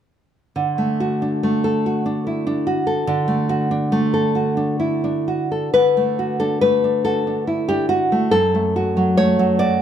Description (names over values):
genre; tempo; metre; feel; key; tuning
romantic piece for solo classical guitar; 46 BPM (dotted quarters); 6/8; uneven beats, rubato; D major; A4 = 440 Hz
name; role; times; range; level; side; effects
nylon-string guitar; solo; 0.6-9.8 s; F#2 to D5; -17 LUFS; equal; none
room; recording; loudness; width
moderate recital hall reverb, RT60 1.2 s; none; -17 LUFS; side -9 dB against mid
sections
0.6-5.7 A section; 5.7-9.8 B section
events
none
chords
0.6 D; 8.3 D/F#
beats
| 0.57 1.86 | 3.08 4.35 | 5.74 7.05 | 8.33 9.59